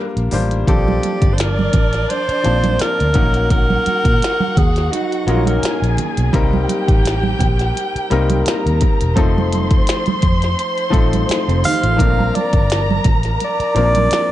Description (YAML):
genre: lush 1970s-style soul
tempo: 85 BPM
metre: 4/4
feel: swing 54% on 16ths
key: Bb major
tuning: A4 = 440 Hz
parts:
  - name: clear baby grand piano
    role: accompaniment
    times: 0.0-14.3 s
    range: F3 to A5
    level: -22 LUFS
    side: left 4 dB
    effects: none
  - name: vintage muted fingered electric bass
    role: bass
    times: 0.2-14.1 s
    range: E1 to Bb2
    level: -18 LUFS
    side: equal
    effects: none
  - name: minimal click drum kit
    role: drums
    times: 0.2-14.3 s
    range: hi-hat, kick drum, snare drum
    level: -18 LUFS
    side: equal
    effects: none
  - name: congas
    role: percussion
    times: 0.3-14.3 s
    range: none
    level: -23 LUFS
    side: right 5 dB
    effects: none
  - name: breathy alto saxophone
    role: melody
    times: 0.7-6.0, 11.7-14.3 s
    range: Gb4 to F5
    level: -19 LUFS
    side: right 1 dB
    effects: none
  - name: dark studio violin section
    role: second line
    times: 0.7-14.3 s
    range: D4 to C6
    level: -23 LUFS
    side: equal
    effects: none
  - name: electric guitar through a small old amp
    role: riff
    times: 4.9-6.3, 11.5-12.2 s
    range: Eb3 to Gb4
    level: -24 LUFS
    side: right 8 dB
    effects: lush chorus
room: studio ambience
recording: dark, warm production, nothing above 10.5 kHz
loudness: -14 LUFS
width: side -13 dB against mid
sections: 0.7-14.3 A section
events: none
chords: 0.0 Bbmaj9; 3.2 Gb6/Bb; 6.3 Cm7; 9.2 F7; 12.0 Bbmaj9